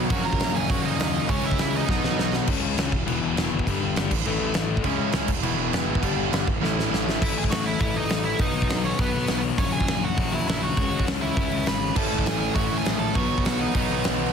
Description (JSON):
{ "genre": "punk rock", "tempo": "202 BPM", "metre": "4/4", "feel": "straight", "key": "unclear", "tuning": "A4 = 437 Hz", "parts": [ { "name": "distorted electric guitar", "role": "riff", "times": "0.0-2.5, 4.8-7.2, 12.0-14.3 s", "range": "G2 to E4", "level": "-28 LUFS", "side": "right 19 dB", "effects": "overdrive" }, { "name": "overdriven electric guitar", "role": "riff", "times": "0.0-14.3 s", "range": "E2 to C#4", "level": "-27 LUFS", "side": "left 10 dB", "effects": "none" }, { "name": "fuzz picked electric bass", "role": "bass", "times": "0.0-14.3 s", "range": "E1 to D#2", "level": "-30 LUFS", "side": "right 1 dB", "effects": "overdrive" }, { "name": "nasal lead guitar with a parked wah", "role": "melody", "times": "0.1-2.3, 7.2-14.0 s", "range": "B3 to B5", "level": "-29 LUFS", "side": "right 6 dB", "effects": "overdrive" }, { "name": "big rock drum kit", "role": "drums", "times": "0.1-14.1 s", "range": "crash cymbal, hi-hat, kick drum, snare drum", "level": "-26 LUFS", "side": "equal", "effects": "soft clipping on snare" } ], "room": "little or no reverb", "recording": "dense, heavily limited modern master", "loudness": "-21 LUFS", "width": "side -7 dB against mid", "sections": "0.0-2.5 A section; 2.5-7.2 B section; 7.2-14.3 A section", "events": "drum fill 1.9-2.5, 6.6-7.2", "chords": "0.1 F#/A#; 1.3 C#m; 1.9 B; 2.5 C#5; 2.9 E5; 3.7 G5; 4.1 A5; 4.8 C#m; 5.3 E; 6.0 G; 6.5 A; 7.2 A5; 8.4 B; 9.6 F#/A#; 10.8 C#m; 12.0 A; 13.1 B" }